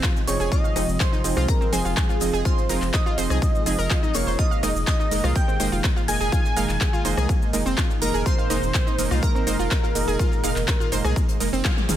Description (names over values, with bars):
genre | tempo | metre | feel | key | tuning
progressive house | 124 BPM | 4/4 | straight | F minor | A4 = 440 Hz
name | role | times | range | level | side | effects
lush unison pad | sustained chords | 0.0-12.0 s | Bb2 to F4 | -31 LUFS | equal | chorus, vintage 12-bit sampler grit, sidechain pumping
analog pluck | arpeggios | 0.0-11.7 s | C4 to F5 | -30 LUFS | right 1 dB | chorus, sidechain pumping, tape echo
big-room dance drum kit | drums | 0.0-12.0 s | handclaps, hi-hat, ride cymbal, rim click, shaker, toms | -29 LUFS | left 1 dB | none
electronic kick drum | drums | 0.0-11.7 s | none | -22 LUFS | equal | none
jazz brush drum kit | drums | 0.0-12.0 s | hi-hat, snare drum | -40 LUFS | left 4 dB | none
wide unison lead | melody | 0.3-11.6 s | Ab4 to Ab5 | -29 LUFS | equal | cassette tape, sidechain pumping, tape echo
glassy wavetable pluck | second line | 0.3-11.6 s | Ab5 to Ab6 | -34 LUFS | right 1 dB | chorus, sidechain pumping, tape echo
supersaw stab | stabs | 0.3-12.0 s | F3 to F5 | -30 LUFS | right 5 dB | sidechain pumping, tape echo
round analog bass | bass | 0.3-12.0 s | F1 to C2 | -26 LUFS | equal | sidechain pumping
room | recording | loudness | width
little or no reverb | none | -19 LUFS | side -11 dB against mid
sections
0.0-12.0 A section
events
drum fill 11.6-12.0; band accent 11.6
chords
0.0 Fm7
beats
0.03 | 0.52 1.00 1.49 1.97 | 2.45 2.94 3.42 3.90 | 4.39 4.87 5.36 5.84 | 6.32 6.81 7.29 7.78 | 8.26 8.74 9.23 9.71 | 10.19 10.68 11.16 11.65